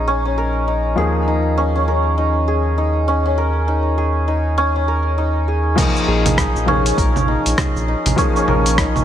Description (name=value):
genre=organic downtempo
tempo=100 BPM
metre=4/4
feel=swing 60% on 16ths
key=unclear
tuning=A4 = 440 Hz
part: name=felt-muted upright piano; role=accompaniment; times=0.0-9.0 s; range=F3 to Ab4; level=-23 LUFS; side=left 2 dB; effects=sidechain pumping, digital delay
part: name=santur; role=arpeggios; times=0.0-9.0 s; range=Db4 to Bb4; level=-19 LUFS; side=equal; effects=digital delay
part: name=round analog bass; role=bass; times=0.0-9.0 s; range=Bb1 to Eb2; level=-19 LUFS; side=equal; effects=none
part: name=dusty soul sampler-style drum kit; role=drums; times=5.8-9.0 s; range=congas, crash cymbal, hi-hat, rim click, shaker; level=-20 LUFS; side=right 2 dB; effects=none
part: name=electronic kick drum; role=drums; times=5.8-8.9 s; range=none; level=-20 LUFS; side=equal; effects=overdrive
room=light reverb, digital ambience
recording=none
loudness=-15 LUFS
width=side -10 dB against mid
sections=0.0-5.8 A section; 5.8-9.0 B section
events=none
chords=0.0 Bbm7; 1.0 Eb7sus4; 5.8 Bbm7